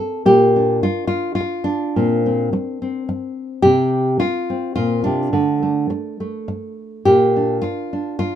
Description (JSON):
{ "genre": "folk, solo fingerstyle acoustic guitar", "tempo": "106 BPM", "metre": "3/4", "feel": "rubato", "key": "Bb major", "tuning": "A4 = 440 Hz", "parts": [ { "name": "nylon-string guitar", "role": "solo", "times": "0.0-8.4 s", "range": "Bb2 to A4", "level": "-16 LUFS", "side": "equal", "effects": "none" } ], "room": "moderate studio ambience, RT60 0.5 s", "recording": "minimal, uncompressed stereo recording", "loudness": "-16 LUFS", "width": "side -10 dB against mid", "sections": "0.3-8.4 A section", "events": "none", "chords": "0.3 Bbadd9; 3.6 C5; 5.3 D5; 7.1 Bb" }